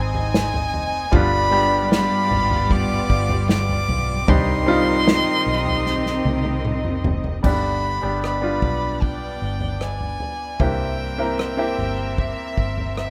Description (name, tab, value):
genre	pop ballad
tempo	76 BPM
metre	4/4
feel	straight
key	C harmonic minor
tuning	A4 = 440 Hz
part	clear violin	melody	0.0-13.1 s	E5 to D6	-27 LUFS	equal	none
part	bright grand piano	accompaniment	0.0-13.1 s	G2 to Bb4	-27 LUFS	equal	none
part	warm studio string section	sustained chords	0.0-13.1 s	B3 to Ab5	-31 LUFS	equal	none
part	vintage muted fingered electric bass	bass	0.0-13.1 s	F1 to C2	-28 LUFS	equal	none
part	unplugged drum kit	drums	0.1-13.1 s	crash cymbal, kick drum, rim click, snare drum, toms	-25 LUFS	equal	none
part	rich symphonic cello section	second line	1.1-7.4 s	G2 to Eb4	-29 LUFS	equal	digital delay
room	small room ambience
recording	rough home demo mix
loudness	-21 LUFS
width	mono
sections	0.0-7.4 A section; 7.4-13.1 B section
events	drum fill 5.9-7.4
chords	0.0 Ab; 1.1 G7; 4.3 Cm; 7.4 G; 10.6 C7